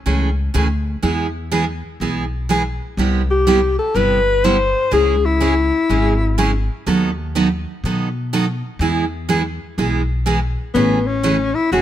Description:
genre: country, western swing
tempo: 124 BPM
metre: 4/4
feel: swing 67% on 8ths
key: A major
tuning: A4 = 437 Hz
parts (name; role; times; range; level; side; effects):
- picked steel-string acoustic guitar; accompaniment; 0.1-11.8 s; C3 to A4; -19 LUFS; right 4 dB; none
- upright bass; bass; 0.1-11.8 s; E1 to B2; -21 LUFS; left 1 dB; none
- mellow alto saxophone; melody; 3.3-6.7, 10.7-11.8 s; B3 to C5; -16 LUFS; left 3 dB; none
room: light reverb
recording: none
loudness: -16 LUFS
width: side -11 dB against mid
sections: 0.0-10.7 A section; 10.7-11.8 B section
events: none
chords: 0.0 Amaj7/C#; 1.0 E; 3.0 Cmaj7; 4.9 C#m; 6.9 B7/D#; 8.8 E; 10.7 Amaj7

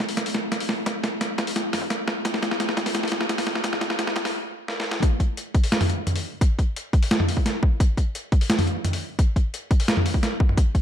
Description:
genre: drum and bass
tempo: 173 BPM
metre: 4/4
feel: half-time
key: none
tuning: none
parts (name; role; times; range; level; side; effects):
- boom bap sampler-style drum kit; drums; 0.0-10.8 s; hi-hat, snare drum, toms; -24 LUFS; equal; overdrive
- electronic kick drum; drums; 0.0-10.8 s; none; -20 LUFS; equal; overdrive, high-pass filter on kick
room: moderate echo chamber reverb, RT60 1.3 s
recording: dark, warm production, high-pass filter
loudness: -21 LUFS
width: side -10 dB against mid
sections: 0.0-5.0 A section; 5.0-10.8 B section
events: build-up 0.0-5.0; drum fill 0.0-4.3, 4.7-5.0; stop 4.3-5.0; drop 5.0-10.8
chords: none

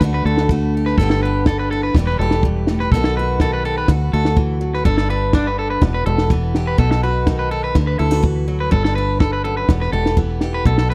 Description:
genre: highlife guitar band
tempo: 124 BPM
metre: 4/4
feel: straight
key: E minor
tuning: A4 = 440 Hz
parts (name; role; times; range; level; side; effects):
- picked steel-string acoustic guitar; accompaniment; 0.0-10.9 s; E2 to G4; -26 LUFS; equal; none
- fingered electric bass; bass; 0.0-10.9 s; E1 to D2; -22 LUFS; equal; none
- compact cocktail drum kit; drums; 0.0-10.9 s; kick drum, snare drum; -20 LUFS; equal; none
- electric guitar at the edge of break-up; arpeggios; 0.1-10.9 s; D4 to B4; -24 LUFS; equal; spring reverb, tape echo
room: little or no reverb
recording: dry, close 1970s-style studio recording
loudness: -18 LUFS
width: mono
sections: 0.0-10.9 A section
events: none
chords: 0.0 D; 1.0 G; 2.0 Em; 2.9 B; 3.9 D; 4.9 G; 5.8 Em; 6.8 B; 7.8 D; 8.7 G; 9.7 Em

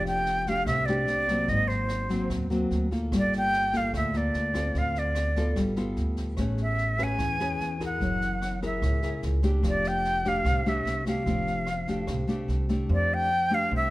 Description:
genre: bossa nova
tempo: 147 BPM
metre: 4/4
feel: straight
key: F major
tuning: A4 = 439 Hz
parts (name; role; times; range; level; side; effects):
- jazz flute; melody; 0.0-13.9 s; C5 to G#5; -27 LUFS; equal; none
- nylon-string guitar; accompaniment; 0.0-13.9 s; Ab2 to B4; -30 LUFS; left 1 dB; none
- upright bass; bass; 0.0-13.9 s; F1 to F2; -30 LUFS; equal; none
- jazz brush drum kit; drums; 0.1-12.7 s; kick drum, rim click, snare drum; -37 LUFS; right 1 dB; none
room: moderate stone room reverb, RT60 1.3 s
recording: band playing live in one room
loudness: -24 LUFS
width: side -18 dB against mid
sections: 0.0-12.9 A section; 12.9-13.9 A section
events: none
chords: 0.0 F69; 1.5 Ab9; 3.1 Gm9; 4.7 Dm7; 5.6 G9; 6.4 Amaj9; 8.0 Gb9; 9.6 F69

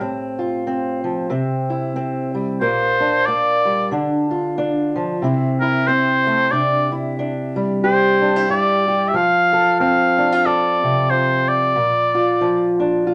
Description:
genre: acoustic folk duo or small band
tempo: 92 BPM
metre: 4/4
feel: swing 59% on 8ths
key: unclear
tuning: A4 = 442 Hz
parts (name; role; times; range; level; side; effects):
- fingerpicked old ladder-braced acoustic guitar; accompaniment; 0.0-13.1 s; G2 to A4; -21 LUFS; equal; none
- clear oboe; melody; 2.6-12.8 s; Bb4 to F5; -19 LUFS; equal; none
room: moderate small room reverb, RT60 0.5 s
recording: faint mains hum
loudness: -18 LUFS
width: mono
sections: 0.0-9.1 A section; 9.1-13.1 B section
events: oboe solo 0.0-9.1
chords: 0.0 F/A; 1.3 C; 2.6 Gm/Bb; 3.9 Dm; 5.2 Am/C; 6.5 Cadd9; 9.1 F; 11.8 Bb

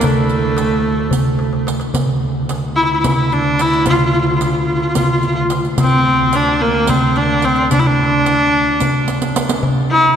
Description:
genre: Turkish makam ensemble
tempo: 219 BPM (eighths)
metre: 7/8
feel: straight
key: D makam nihavent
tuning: A4 = 437 Hz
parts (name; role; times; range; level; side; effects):
- clear viola; melody; 0.0-10.2 s; A3 to F4; -15 LUFS; equal; none
- warm double bass; drone; 0.0-9.7 s; D2; -22 LUFS; right 1 dB; none
- darbuka; percussion; 0.0-10.0 s; none; -19 LUFS; equal; none
- riq; percussion; 0.0-9.6 s; none; -25 LUFS; right 4 dB; none
room: wet cathedral reverb, RT60 4.7 s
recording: recorded in a church or concert hall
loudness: -13 LUFS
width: side -8 dB against mid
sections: 0.0-9.6 A section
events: drum fill 1.4-1.9, 9.1-9.6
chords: none

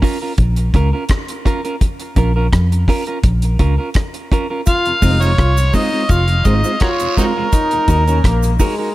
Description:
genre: roots reggae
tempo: 84 BPM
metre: 4/4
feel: straight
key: Bb minor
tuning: A4 = 441 Hz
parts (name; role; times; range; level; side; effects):
- clean electric guitar; accompaniment; 0.0-8.9 s; Ab3 to Bb4; -22 LUFS; right 3 dB; dub echo
- deep reggae drum kit; drums; 0.0-8.8 s; hi-hat, kick drum, rim click; -17 LUFS; equal; none
- vintage muted fingered electric bass; bass; 0.4-8.6 s; F1 to F2; -14 LUFS; equal; none
- overdriven harmonica; melody; 4.7-8.6 s; Eb4 to F5; -19 LUFS; right 1 dB; dub echo
- clear trombone; second line; 4.7-8.9 s; Ab3 to F4; -22 LUFS; left 2 dB; dub echo
- cabasa and guiro; percussion; 4.7-8.8 s; none; -31 LUFS; right 5 dB; none
- mellow tonewheel organ; accompaniment; 4.9-8.7 s; Eb2 to F4; -28 LUFS; left 1 dB; none
room: light reverb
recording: echo-heavy mix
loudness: -13 LUFS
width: side -16 dB against mid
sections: 0.0-8.9 A section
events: none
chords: 0.0 Bbm; 4.7 Fm; 7.5 Ebm

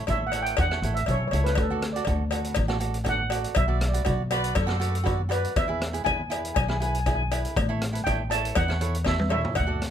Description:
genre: calypso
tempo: 120 BPM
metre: 4/4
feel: straight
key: unclear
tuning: A4 = 440 Hz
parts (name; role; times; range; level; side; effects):
- cavaquinho; accompaniment; 0.0-9.8 s; E4 to D5; -33 LUFS; right 6 dB; none
- steel pan; melody; 0.1-9.9 s; A4 to A5; -29 LUFS; right 2 dB; none
- upright bass; bass; 0.1-9.9 s; A1 to F#2; -27 LUFS; equal; none
- street-band drum kit; drums; 0.1-9.9 s; hi-hat, kick drum, rim click, snare drum, toms; -30 LUFS; equal; none
- cowbell; percussion; 0.1-9.7 s; none; -31 LUFS; left 8 dB; none
- bright horn section; second line; 4.3-5.2 s; A3 to B4; -32 LUFS; left 1 dB; none
room: little or no reverb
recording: close, detailed microphones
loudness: -23 LUFS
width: side -9 dB against mid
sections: 0.0-9.6 A section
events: steel pan solo 0.0-9.6; drum fill 9.1-9.6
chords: 0.0 A; 1.6 D; 3.6 Bm7; 5.6 E; 7.6 A

